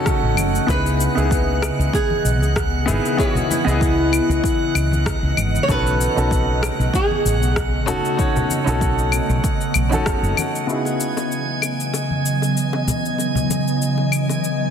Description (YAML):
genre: sunset chillout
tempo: 96 BPM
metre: 4/4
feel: swing 54% on 16ths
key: C# minor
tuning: A4 = 440 Hz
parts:
  - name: flamenco guitar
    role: melody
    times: 0.0-10.0 s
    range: E4 to C#5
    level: -24 LUFS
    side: equal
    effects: ping-pong delay
  - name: warm grand piano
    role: accompaniment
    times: 0.0-14.7 s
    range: C#3 to D#5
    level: -24 LUFS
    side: left 1 dB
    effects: auto-pan, low-pass filter, ping-pong delay
  - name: ethereal airy pad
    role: sustained chords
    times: 0.0-14.7 s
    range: C#3 to D#5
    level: -24 LUFS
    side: right 1 dB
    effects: ensemble chorus, built-in reverb, vintage 12-bit sampler grit
  - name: drifting glass-harmonics texture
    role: texture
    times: 0.0-14.7 s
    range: F#5 to G#6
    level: -28 LUFS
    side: right 3 dB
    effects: chorus, built-in reverb
  - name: electronic kick drum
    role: drums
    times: 0.1-10.2 s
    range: none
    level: -22 LUFS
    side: equal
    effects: overdrive
  - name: electronic rim click, cabasa and claves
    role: drums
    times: 0.1-14.6 s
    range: none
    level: -26 LUFS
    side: left 4 dB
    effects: overdrive
  - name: woody fretless electric bass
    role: bass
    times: 0.2-10.3 s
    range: F#1 to C#2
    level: -20 LUFS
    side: equal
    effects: none
  - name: congas and bongos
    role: percussion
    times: 0.4-14.4 s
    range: none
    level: -29 LUFS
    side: left 2 dB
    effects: none
room: moderate concert hall reverb, RT60 2.2 s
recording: dense, heavily limited modern master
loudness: -17 LUFS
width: side -8 dB against mid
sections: 0.0-10.7 A section; 10.7-14.7 B section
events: filter sweep on grand piano 10.7-14.7; filter sweep on ambient pad 10.7-14.7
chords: 0.0 B9 (rootless); 0.7 C#m9; 5.7 B9; 10.7 C#m11